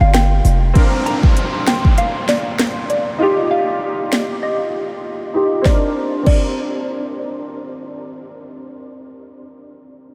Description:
dancehall; 98 BPM; 4/4; swing 56% on 16ths; Bb major; A4 = 440 Hz
hollow square pluck; melody; 0.0-7.5 s; D5 to Bb5; -25 LUFS; equal; chorus, low-pass filter, delay
clear baby grand piano; accompaniment; 0.0-10.1 s; G3 to Bb4; -24 LUFS; equal; ensemble chorus, sidechain pumping, low-pass filter
hard-hitting 808-style bass; bass; 0.0-0.7 s; F1 to G1; -15 LUFS; equal
afro-pop drum kit; drums; 0.1-6.5 s; crash cymbal, hi-hat, kick drum, rim click, snare drum; -20 LUFS; equal
cabasa; percussion; 0.5-0.6 s; -45 LUFS; equal
downlifter; sound effects; 0.8-5.7 s; -30 LUFS; equal
wet huge ambient reverb, RT60 8.0 s; dreamy mix soaked in reverb; -17 LUFS; mono
0.8-5.7 A section; 5.7-8.1 B section
break 0.0-0.8, 4.4-5.7; filter sweep 0.8-5.7
0.0 Gm7; 0.8 Bbadd9; 3.2 Ebadd9; 5.7 Bbadd9
0.14 | 0.76 1.37 1.98 2.59 | 3.21 3.82 4.43 5.04 | 5.65 6.27 6.88 7.49

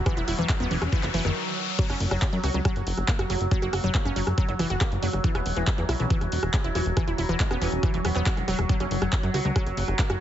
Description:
psychedelic trance; 139 BPM; 4/4; straight; A4 = 442 Hz
overtone-sweeping drone; sustained chords; 0.0-10.2 s; F#3; -32 LUFS; right 1 dB; chorus, built-in reverb, phaser, sidechain pumping
riser; sound effects; 0.0-1.8 s; -33 LUFS; left 6 dB
wide unison pluck; riff; 0.1-10.1 s; D#3 to F#4; -30 LUFS; equal; auto-pan, cassette tape, sidechain pumping, dub echo
drum and bass drum kit; drums; 0.1-10.2 s; crash cymbal, handclaps, hi-hat, rim click; -32 LUFS; equal; overdrive, small room ambience
electronic kick drum; drums; 0.1-10.1 s; -25 LUFS; equal; overdrive, small room ambience
plucky analog bass; bass; 0.2-10.2 s; E1 to F#2; -28 LUFS; equal
vowel-sweep wobble bass; second line; 0.6-9.5 s; F#3 to F#4; -39 LUFS; left 4 dB
light reverb, digital ambience; heavily compressed radio sound, nothing above 7.8 kHz; -23 LUFS; side -11 dB against mid
0.0-1.8 A section; 1.8-10.2 B section
riser 0.0-1.8; stop 1.4-1.8; drop 1.8-10.2
0.0 E5; 1.8 F#5; 5.2 E5; 8.7 F#5
| 0.06 0.49 0.93 1.36 | 1.79 2.22 2.65 3.08 | 3.51 3.95 4.38 4.81 | 5.24 5.67 6.10 6.54 | 6.97 7.40 7.83 8.26 | 8.69 9.13 9.56 9.99

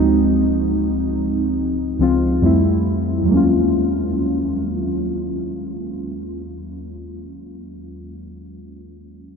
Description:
R&B; 70 BPM; 4/4; swing 54% on 16ths; Eb dorian; A4 = 440 Hz
muted felt-like synth keys; accompaniment; 0.0-9.2 s; Db2 to F4; -18 LUFS; equal; chorus, low-pass filter
wet huge ambient reverb, RT60 7.6 s; dreamy mix soaked in reverb; -17 LUFS; side -6 dB against mid
0.0-3.3 A section; 3.3-6.7 B section
0.0 Dbmaj9; 2.4 Fmaj9; 3.3 Ebm11
0.71 1.57 2.43 | 3.28 4.14 5.00 5.86

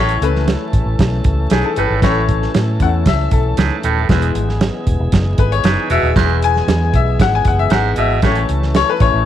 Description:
uptempo 1960s-style soul; 116 BPM; 4/4; straight; A4 = 441 Hz
bright upright piano; accompaniment; 0.0-9.3 s; G#3 to G#5; -19 LUFS; left 10 dB
tonewheel organ; sustained chords; 0.0-9.3 s; E3 to A4; -24 LUFS; left 1 dB; overdrive, lush chorus
clear baritone saxophone; riff; 0.0-8.4 s; E2 to B2; -21 LUFS; right 9 dB
vintage muted fingered electric bass; bass; 0.0-9.2 s; D#1 to A2; -17 LUFS; equal
warm soul drum kit; drums; 0.1-9.1 s; hi-hat, kick drum, snare drum; -18 LUFS; right 2 dB
light reverb, small room ambience; 1960s-style stereo with parts hard left and right, vinyl crackle; -13 LUFS; side -11 dB against mid
0.0-9.3 A section
upright piano solo 0.0-9.3
0.0 A; 4.1 E; 8.2 A
0.48 0.99 1.51 | 2.03 2.55 3.06 3.58 | 4.10 4.61 5.13 5.65 | 6.17 6.68 7.20 7.72 | 8.23 8.75

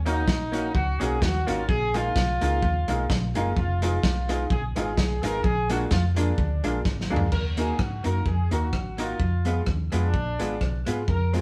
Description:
ska; 128 BPM; 4/4; swing 55% on 8ths; Eb harmonic minor from 7.3 s; A4 = 444 Hz
hollow-body short-scale fingered electric bass; bass; 0.0-11.4 s; F1 to Ab2; -29 LUFS; equal
mellow horn section; melody; 0.1-11.4 s; D4 to Bb4; -32 LUFS; equal
vintage hollow-body jazz guitar; accompaniment; 0.1-11.4 s; Ab3 to Gb4; -35 LUFS; equal
dark upright piano; stabs; 0.1-11.4 s; Ab3 to Bb4; -35 LUFS; equal
crunchy breakbeat drum kit; drums; 0.1-11.4 s; crash cymbal, hi-hat, kick drum, rim click, snare drum, toms; -30 LUFS; equal
moderate studio reverb, RT60 0.7 s; band playing live in one room; -25 LUFS; mono
0.0-7.3 A section; 7.3-11.4 B section
drum fill 6.8-7.3
0.0 Ebm7; 1.7 Bb7sus4; 3.6 Fm7b5; 5.4 Bb7; 7.3 Ebm; 9.2 Fdim
0.28 0.75 1.22 | 1.69 2.16 2.62 3.10 | 3.56 4.03 4.50 4.97 | 5.44 5.91 6.38 6.85 | 7.32 7.79 8.26 8.73 | 9.20 9.67 10.14 10.61 | 11.08

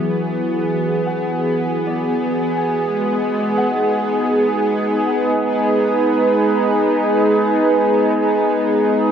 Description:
ambient; free time; A4 = 443 Hz
warm analog pad; sustained chords; 0.0-9.1 s; E3 to B4; -16 LUFS; right 1 dB; chorus
concert harp; arpeggios; 0.0-8.2 s; F#3 to G#5; -29 LUFS; left 2 dB; diffuse ambient delay
bowed-like drone; drone; 0.0-9.1 s; B3; -23 LUFS; equal; built-in reverb
wet huge ambient reverb, RT60 7.5 s; worn, warbling old tape, cassette tape, warbly pitch drift; -15 LUFS; side -8 dB against mid
0.0-9.1 A section
0.0 E9; 2.9 G#m7
free time

